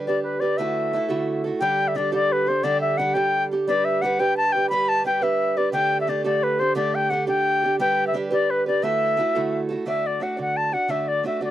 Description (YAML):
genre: celtic folk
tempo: 116 BPM (dotted quarters)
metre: 6/8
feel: straight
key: D major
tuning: A4 = 440 Hz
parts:
  - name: picked acoustic archtop guitar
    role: accompaniment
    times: 0.0-11.5 s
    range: D3 to D5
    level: -24 LUFS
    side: right 3 dB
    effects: none
  - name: wooden flute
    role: melody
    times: 0.1-11.5 s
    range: B4 to B5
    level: -21 LUFS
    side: left 2 dB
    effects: none
room: little or no reverb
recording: dry, close 1970s-style studio recording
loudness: -20 LUFS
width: side -12 dB against mid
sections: 0.0-1.6 A section; 1.6-9.9 A section; 9.9-11.5 B section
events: none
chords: 0.0 G; 0.6 Dadd9; 1.6 Dsus4; 3.7 G; 5.7 Dsus4; 7.8 G; 8.8 Dadd9; 9.9 D